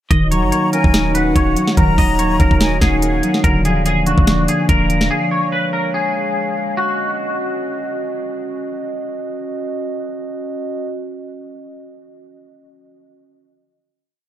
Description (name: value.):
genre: hip hop, trap.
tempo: 144 BPM.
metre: 4/4.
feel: half-time.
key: Eb minor.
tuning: A4 = 439 Hz.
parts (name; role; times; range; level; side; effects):
twangy electric guitar; melody; 0.1-8.0 s; Gb4 to Eb5; -21 LUFS; left 1 dB; ensemble chorus, digital delay.
concert harp; accompaniment; 0.1-7.9 s; D3 to D5; -19 LUFS; equal; none.
glass harmonica; sustained chords; 0.1-10.9 s; Ab3 to F5; -25 LUFS; right 2 dB; none.
clean 808-style bass; bass; 0.1-5.1 s; Eb1 to Gb1; -18 LUFS; equal; none.
trap drum kit; drums; 0.1-5.1 s; hi-hat, kick drum, snare drum; -17 LUFS; equal; overdrive.
breathy bright silver concert flute; second line; 0.3-3.4 s; Gb5 to Bb5; -25 LUFS; left 7 dB; digital delay.
room: studio reverb.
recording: none.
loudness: -15 LUFS.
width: side -12 dB against mid.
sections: 0.1-6.8 hook; 6.8-10.1 final chord.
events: none.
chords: 0.1 Ebm7; 3.4 Bb/Eb; 5.1 Db; 6.8 Ebm7.